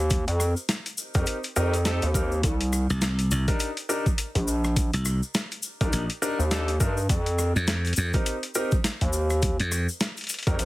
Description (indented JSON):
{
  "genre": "glitch hop",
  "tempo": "103 BPM",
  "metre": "4/4",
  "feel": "swing 58% on 16ths",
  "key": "unclear",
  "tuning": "A4 = 437 Hz",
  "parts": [
    { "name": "gritty driven synth bass", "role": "bass", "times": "0.0-10.7 s", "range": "Bb1 to G2", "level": "-24 LUFS", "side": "equal", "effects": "overdrive" },
    { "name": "boom bap sampler-style drum kit", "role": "drums", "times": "0.1-10.7 s", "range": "hi-hat, rim click, snare drum", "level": "-29 LUFS", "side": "equal", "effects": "none" },
    { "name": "electronic kick drum", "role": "drums", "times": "0.1-10.6 s", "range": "none", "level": "-25 LUFS", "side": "equal", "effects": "overdrive" },
    { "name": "cabasa", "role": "percussion", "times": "0.1-10.7 s", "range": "none", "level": "-34 LUFS", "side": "left 3 dB", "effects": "none" },
    { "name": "clear grand piano", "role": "stabs", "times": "1.1-10.7 s", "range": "C4 to Bb4", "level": "-31 LUFS", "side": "equal", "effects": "sidechain pumping, tape echo" },
    { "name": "slap bass", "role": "bass", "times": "2.9-9.9 s", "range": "Bb1 to F2", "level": "-24 LUFS", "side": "equal", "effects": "none" }
  ],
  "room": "light reverb",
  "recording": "heavily compressed radio sound, multiband compression",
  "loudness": "-23 LUFS",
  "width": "side -18 dB against mid",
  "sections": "0.0-10.7 A section",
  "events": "none",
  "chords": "0.0 F7sus4; 2.4 Cm7; 7.1 F7sus4"
}